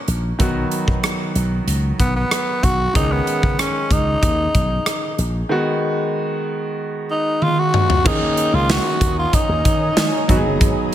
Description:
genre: 1980s-style pop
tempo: 94 BPM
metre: 4/4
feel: straight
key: G# minor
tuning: A4 = 440 Hz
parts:
  - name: growling tenor saxophone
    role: melody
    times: 0.0-10.3 s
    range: B3 to F#4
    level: -20 LUFS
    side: equal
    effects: ping-pong delay
  - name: clear concert grand piano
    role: accompaniment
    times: 0.0-10.9 s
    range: D#3 to G#4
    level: -23 LUFS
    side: equal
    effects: none
  - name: slap bass with an envelope filter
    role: bass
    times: 0.1-10.7 s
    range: F#1 to D#3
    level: -21 LUFS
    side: equal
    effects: none
  - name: big rock drum kit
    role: drums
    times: 0.1-10.9 s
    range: crash cymbal, hi-hat, kick drum, rim click, snare drum, toms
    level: -20 LUFS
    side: equal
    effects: gated reverb
  - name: ethereal airy pad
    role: sustained chords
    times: 8.8-10.9 s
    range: B4 to D#6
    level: -28 LUFS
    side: right 2 dB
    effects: ensemble chorus, built-in reverb
room: light reverb, studio reverb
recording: none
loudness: -16 LUFS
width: side -11 dB against mid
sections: 0.0-8.1 A section; 8.1-10.9 B section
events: drum fill 7.4-8.1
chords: 0.4 B; 3.0 C#sus2; 5.5 G#m7; 8.1 D#7sus4; 10.3 G#m7

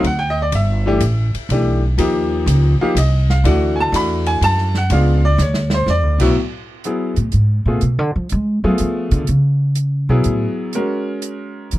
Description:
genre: jazz piano trio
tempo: 124 BPM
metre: 3/4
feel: swing 68% on 8ths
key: A major from 6.4 s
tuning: A4 = 445 Hz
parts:
  - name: bright upright piano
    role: melody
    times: 0.0-11.8 s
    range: A2 to B5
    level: -19 LUFS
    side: left 1 dB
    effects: none
  - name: upright bass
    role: bass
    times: 0.0-11.8 s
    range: G1 to G#3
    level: -16 LUFS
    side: equal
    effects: none
  - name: open jazz drum kit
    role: drums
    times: 0.0-11.8 s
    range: crash cymbal, hi-hat, kick drum, ride cymbal, snare drum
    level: -27 LUFS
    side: equal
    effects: none
room: studio ambience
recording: dry, close 1970s-style studio recording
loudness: -14 LUFS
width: side -15 dB against mid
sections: 0.0-6.4 A section; 6.4-11.8 A section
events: upright piano solo 0.0-6.4; drum fill 5.4-5.9; upright bass solo 6.4-11.8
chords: 0.0 D(b9); 0.5 G69; 2.0 D#9; 3.4 Dadd9; 4.9 C#7b9; 5.9 Esus2; 6.4 Asus2; 7.8 Bdim7; 9.3 F#m9; 10.7 F#7

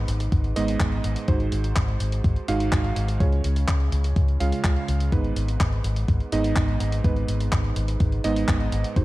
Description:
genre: italo disco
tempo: 125 BPM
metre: 4/4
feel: straight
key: G# dorian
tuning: A4 = 440 Hz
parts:
  - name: warm electric grand piano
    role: stabs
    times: 0.0-9.0 s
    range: G#2 to E#5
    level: -28 LUFS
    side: right 4 dB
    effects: ping-pong delay
  - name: fingered electric bass with an envelope filter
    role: bass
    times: 0.0-9.0 s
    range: G#1 to C#2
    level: -24 LUFS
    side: equal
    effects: none
  - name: clean 12-bit digital drum machine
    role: drums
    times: 0.1-9.0 s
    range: handclaps, hi-hat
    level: -32 LUFS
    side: equal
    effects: studio ambience
  - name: electronic kick drum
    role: drums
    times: 0.3-9.0 s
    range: none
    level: -22 LUFS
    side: equal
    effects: studio ambience
room: digital ambience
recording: dark, warm production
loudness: -21 LUFS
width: side -18 dB against mid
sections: 0.0-9.0 A section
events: none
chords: 0.0 G#m; 1.3 G#7; 3.2 C#; 5.1 G#m

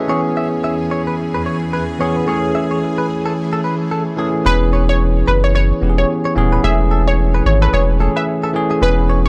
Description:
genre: afrobeats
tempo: 110 BPM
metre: 4/4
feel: swing 58% on 16ths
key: E major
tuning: A4 = 440 Hz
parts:
  - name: barky tine electric piano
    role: accompaniment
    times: 0.0-9.3 s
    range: E3 to E5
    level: -20 LUFS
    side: equal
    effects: none
  - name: granular cloud pad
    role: sustained chords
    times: 0.0-4.4 s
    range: E2 to G#4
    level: -29 LUFS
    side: equal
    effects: built-in reverb
  - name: direct-recorded clean electric guitar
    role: riff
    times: 0.1-9.2 s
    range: G#4 to E5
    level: -27 LUFS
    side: equal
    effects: lush chorus, tape echo
  - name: analog pluck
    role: melody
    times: 4.5-9.3 s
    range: B4 to E5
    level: -22 LUFS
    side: equal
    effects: chorus, tape echo
  - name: saturated sub bass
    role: bass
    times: 4.5-9.3 s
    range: D#1 to G#1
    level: -17 LUFS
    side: equal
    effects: none
room: light reverb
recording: dry, gritty hardware recording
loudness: -16 LUFS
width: mono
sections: 0.0-4.5 A section; 4.5-9.3 B section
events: none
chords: 0.1 E6; 2.3 Amaj7/E; 4.5 E6; 6.6 Amaj7/E

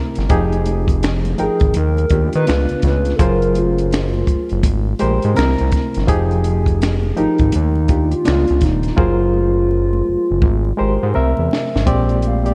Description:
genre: R&B, neo-soul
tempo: 83 BPM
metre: 4/4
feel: swing 62% on 16ths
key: F dorian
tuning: A4 = 440 Hz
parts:
  - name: reed electric piano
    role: accompaniment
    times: 0.0-12.5 s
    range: Bb2 to G5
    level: -23 LUFS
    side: equal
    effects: fast tremolo
  - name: fat analog bass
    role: bass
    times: 0.2-12.5 s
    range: Eb1 to Eb3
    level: -20 LUFS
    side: equal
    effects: none
  - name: compact cocktail drum kit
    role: drums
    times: 0.2-12.5 s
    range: finger snaps, hi-hat, kick drum, snare drum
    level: -21 LUFS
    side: equal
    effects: vintage 12-bit sampler grit
  - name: congas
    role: percussion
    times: 0.3-12.4 s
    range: none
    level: -34 LUFS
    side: equal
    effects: none
  - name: hollow clarinet-like synth lead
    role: melody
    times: 1.4-12.5 s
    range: Eb4 to F5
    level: -23 LUFS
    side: equal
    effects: chorus, analog delay
room: light reverb, small room ambience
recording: none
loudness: -16 LUFS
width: mono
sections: 0.0-11.9 A section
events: drum fill 9.0-11.9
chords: 0.3 Fm9; 1.7 Ebmaj9; 2.5 Db7b9; 3.2 Gbmaj9#11; 4.6 Abmaj9; 5.4 C7; 6.1 Fm9; 7.5 Ebmaj9; 8.3 Db7b9; 9.0 Gbmaj9#11; 10.4 Abmaj9; 11.1 C7; 11.9 Bb13

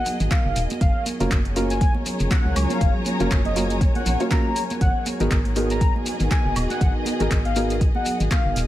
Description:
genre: deep house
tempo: 120 BPM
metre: 4/4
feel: swing 57% on 16ths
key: G# dorian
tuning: A4 = 438 Hz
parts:
  - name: warm velvety synth lead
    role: melody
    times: 0.0-8.6 s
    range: D#5 to A#5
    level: -29 LUFS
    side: left 2 dB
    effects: chorus
  - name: dark analog pad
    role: sustained chords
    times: 0.0-8.7 s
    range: B3 to A#4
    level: -32 LUFS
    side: right 1 dB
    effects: chorus, sidechain pumping
  - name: dark studio string section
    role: texture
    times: 0.0-8.7 s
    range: F#3 to A#5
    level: -31 LUFS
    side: left 1 dB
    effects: sidechain pumping
  - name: deep house drum kit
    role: drums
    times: 0.1-8.7 s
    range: handclaps, hi-hat, woodblock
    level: -31 LUFS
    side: equal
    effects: studio reverb
  - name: congas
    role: percussion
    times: 0.1-8.4 s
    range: none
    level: -33 LUFS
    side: right 3 dB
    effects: sidechain pumping on perc
  - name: shekere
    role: percussion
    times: 0.1-8.7 s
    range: none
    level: -35 LUFS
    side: left 2 dB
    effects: none
  - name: organ-like FM bass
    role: bass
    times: 0.2-8.7 s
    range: D#1 to C#2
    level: -24 LUFS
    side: equal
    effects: tube saturation, sidechain pumping
  - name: electronic kick drum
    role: drums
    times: 0.3-8.4 s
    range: none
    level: -21 LUFS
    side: equal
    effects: studio reverb
  - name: felt-muted upright piano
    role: stabs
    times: 1.2-7.8 s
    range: A#3 to C#5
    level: -26 LUFS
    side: equal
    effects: ping-pong delay
room: small room ambience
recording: vinyl crackle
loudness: -19 LUFS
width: side -14 dB against mid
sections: 0.0-8.7 A section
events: none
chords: 0.0 G#m9; 0.8 F#maj7; 4.8 G#m9

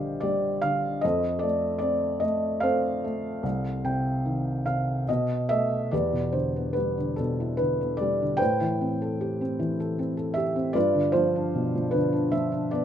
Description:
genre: classical, lyrical solo piano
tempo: 74 BPM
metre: 3/4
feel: uneven beats, rubato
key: E minor from 5.9 s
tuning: A4 = 440 Hz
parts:
  - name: felt-muted upright piano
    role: solo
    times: 0.0-12.8 s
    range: Bb1 to G5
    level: -24 LUFS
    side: equal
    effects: none
room: light reverb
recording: close, detailed microphones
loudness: -24 LUFS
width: side -9 dB against mid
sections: 0.0-5.9 A section; 5.9-12.8 B section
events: felt piano fill 3.4-5.9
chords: 0.0 Ebmaj7; 1.0 F; 3.4 Cm; 5.1 B7; 5.9 Em7; 8.4 Am9; 10.8 G7

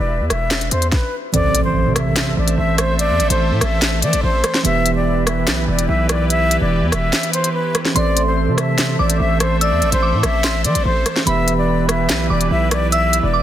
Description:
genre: hip hop, drill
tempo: 145 BPM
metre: 4/4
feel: half-time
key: A minor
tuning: A4 = 440 Hz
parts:
  - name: breathy concert flute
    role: melody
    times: 0.0-13.4 s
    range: B4 to E5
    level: -21 LUFS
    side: left 2 dB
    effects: ping-pong delay
  - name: sweeping resonant pad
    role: sustained chords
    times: 0.0-13.4 s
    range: E3 to E5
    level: -26 LUFS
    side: left 1 dB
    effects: chorus
  - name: distorted 808-style bass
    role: bass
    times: 0.0-13.4 s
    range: E1 to E3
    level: -20 LUFS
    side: equal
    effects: distortion
  - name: drill drum kit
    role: drums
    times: 0.3-13.2 s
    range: handclaps, hi-hat, kick drum, rim click, snare drum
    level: -20 LUFS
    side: equal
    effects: none
  - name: mellow tine electric piano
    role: accompaniment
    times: 1.3-13.4 s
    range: E3 to C5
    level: -22 LUFS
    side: right 6 dB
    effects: none
  - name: impact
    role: sound effects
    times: 1.3-3.0 s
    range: none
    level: -25 LUFS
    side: equal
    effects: none
  - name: soft synth bell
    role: second line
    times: 8.0-13.4 s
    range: B5 to E6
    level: -24 LUFS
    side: right 1 dB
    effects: chorus, ping-pong delay
room: light reverb, digital ambience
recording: dense, heavily limited modern master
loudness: -14 LUFS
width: side -11 dB against mid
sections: 0.0-1.3 A section; 1.3-13.4 B section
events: stop 0.9-1.3; impact 1.3-3.0; kick muted 7.1-8.0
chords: 0.0 Em; 1.3 Am; 4.6 Em; 8.0 Am; 11.3 Em

